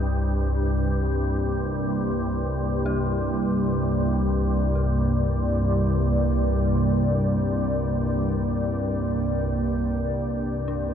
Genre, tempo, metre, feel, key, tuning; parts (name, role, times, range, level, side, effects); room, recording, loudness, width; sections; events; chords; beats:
dark ambient drone; free time; A4 = 440 Hz
dark analog pad; sustained chords; 0.0-10.9 s; C3 to D5; -26 LUFS; equal; chorus
organ-like drone; drone; 0.0-10.9 s; C2 to G2; -24 LUFS; equal; ensemble chorus, built-in reverb
dark detuned synth bell; arpeggios; 2.9-10.9 s; D4 to G4; -40 LUFS; left 4 dB; chorus, tremolo, ping-pong delay
wet huge ambient reverb, RT60 7.5 s; dark, warm production; -22 LUFS; side -8 dB against mid
0.0-10.9 A section
fade-out 6.8-10.9
0.1 Gm/C
free time